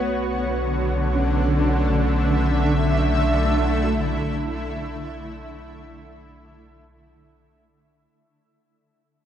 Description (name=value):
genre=ambient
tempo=56 BPM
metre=4/4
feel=straight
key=unclear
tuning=A4 = 441 Hz
part: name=shimmering ambient pad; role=sustained chords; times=0.0-8.1 s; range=D3 to E5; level=-22 LUFS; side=equal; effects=chorus, built-in reverb
part: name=muted felt-like synth keys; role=arpeggios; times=0.0-8.1 s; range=A3 to F#5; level=-31 LUFS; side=right 1 dB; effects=none
part: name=warm sub bass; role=bass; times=0.0-8.1 s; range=B1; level=-24 LUFS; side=equal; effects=none
room=wet huge ambient reverb, RT60 8.0 s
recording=worn, warbling old tape, cassette tape, warbly pitch drift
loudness=-19 LUFS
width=side -10 dB against mid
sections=0.0-8.1 A section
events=fade-out 0.0-8.1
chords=0.0 Dsus2/B